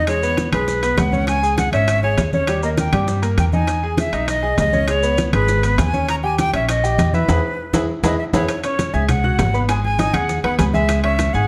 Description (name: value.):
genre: latin, salsa.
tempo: 200 BPM.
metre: 4/4.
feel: straight.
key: unclear.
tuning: A4 = 439 Hz.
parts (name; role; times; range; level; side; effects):
breathy bright silver concert flute; melody; 0.0-11.5 s; B4 to A#5; -24 LUFS; equal; none.
bright concert grand piano; accompaniment; 0.0-11.5 s; G3 to G#6; -26 LUFS; equal; none.
upright bass; bass; 0.0-11.5 s; G#1 to G2; -23 LUFS; equal; none.
bongos; percussion; 0.1-11.5 s; none; -31 LUFS; equal; none.
congas; percussion; 0.1-11.3 s; none; -27 LUFS; equal; none.
maracas; percussion; 0.1-11.5 s; none; -39 LUFS; equal; none.
timbales; percussion; 0.1-11.3 s; none; -30 LUFS; equal; none.
room: moderate large studio reverb, RT60 1.2 s.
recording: dark, warm production.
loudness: -18 LUFS.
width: mono.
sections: 0.0-8.5 A section; 8.5-11.5 B section.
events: band accent 7.3-8.5; drum fill 7.9-8.5.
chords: 0.1 E; 1.3 C#m; 2.5 D#; 3.7 Emaj7; 4.9 C#5; 6.1 D#7; 7.3 E; 8.5 F#sus2; 9.7 G#m7; 10.9 C#m.